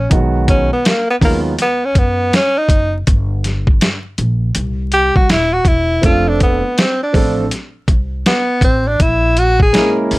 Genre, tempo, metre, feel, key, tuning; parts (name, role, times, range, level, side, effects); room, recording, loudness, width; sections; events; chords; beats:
hip hop, jazz-hop; 81 BPM; 4/4; swing 62% on 16ths; A4 = 438 Hz
warm tenor saxophone; melody; 0.0-10.0 s; A#3 to G#4; -15 LUFS; equal
upright bass; bass; 0.0-10.2 s; D#1 to F#2; -18 LUFS; equal
dark concert grand piano; accompaniment; 0.1-1.5, 6.0-10.2 s; D#3 to A#4; -17 LUFS; right 2 dB
boom bap sampler-style drum kit; drums; 0.1-10.2 s; hi-hat, kick drum, snare drum; -14 LUFS; equal; vintage 12-bit sampler grit
light reverb; vinyl crackle; -12 LUFS; side -20 dB against mid
0.0-10.2 A section
tenor saxophone solo 0.0-10.2
0.1 B6; 3.1 Gm; 4.6 C; 6.0 F6; 9.0 A#m7b5
| 0.11 0.85 1.59 2.33 | 3.07 3.81 4.55 5.29 | 6.03 6.77 7.51 8.26 | 9.00 9.74